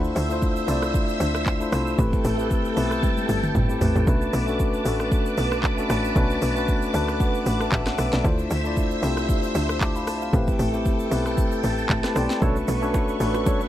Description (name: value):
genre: amapiano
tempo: 115 BPM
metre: 4/4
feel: swing 55% on 16ths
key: B phrygian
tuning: A4 = 440 Hz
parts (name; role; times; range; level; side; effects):
- mellow tine electric piano; accompaniment; 0.0-13.7 s; A3 to D6; -26 LUFS; left 2 dB; none
- string machine, cellos; sustained chords; 0.0-13.7 s; A4 to E6; -29 LUFS; right 1 dB; phaser, ensemble chorus
- tight log drum bass; bass; 0.0-13.6 s; G1 to D2; -26 LUFS; equal; none
- afro-pop drum kit; drums; 0.0-13.7 s; handclaps, hi-hat, kick drum, rim click, shaker, snare drum, toms; -25 LUFS; equal; none
- percussive organ stab; stabs; 12.4-13.6 s; D4 to C#5; -29 LUFS; equal; chorus, tape echo
- congas and bongos; percussion; 12.4-13.6 s; none; -32 LUFS; right 5 dB; none
room: little or no reverb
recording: none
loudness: -20 LUFS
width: side -12 dB against mid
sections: 0.0-13.7 A section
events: drum fill 3.0-4.1; tine electric piano fill 6.7-8.2, 11.4-12.4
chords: 0.0 Dm9; 2.0 Am9; 4.1 Bm9; 8.2 Dm9; 10.3 Am9; 12.4 Bm9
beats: 0.42 0.94 1.46 | 1.99 2.51 3.03 3.55 | 4.07 4.59 5.12 5.64 | 6.16 6.68 7.20 7.72 | 8.25 8.77 9.29 9.81 | 10.33 10.85 11.38 11.90 | 12.42 12.94 13.46